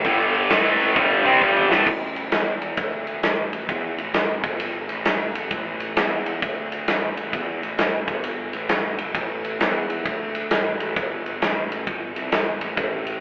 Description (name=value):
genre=blues rock power trio and southern rock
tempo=132 BPM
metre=4/4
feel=swing 65% on 8ths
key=unclear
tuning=A4 = 439 Hz
part: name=distorted electric guitar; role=riff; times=0.0-1.9 s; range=G2 to C4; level=-16 LUFS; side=equal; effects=overdrive
part: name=fuzz picked electric bass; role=bass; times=0.0-13.2 s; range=G1 to E2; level=-28 LUFS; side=equal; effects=overdrive
part: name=big rock drum kit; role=drums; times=0.0-13.1 s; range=crash cymbal, kick drum, ride cymbal, snare drum, toms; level=-22 LUFS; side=equal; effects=none
room=light reverb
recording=band playing live in one room, telephone sound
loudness=-20 LUFS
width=side -31 dB against mid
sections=0.0-1.9 A section; 1.9-13.2 B section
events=drum fill 1.0-1.9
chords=0.0 G5; 0.5 A5; 1.9 N.C.; 3.2 A5; 4.4 N.C.; 4.8 Gsus2; 6.0 N.C.; 6.9 A5; 8.0 N.C.; 8.5 Gsus2; 9.6 N.C.; 11.4 Gsus2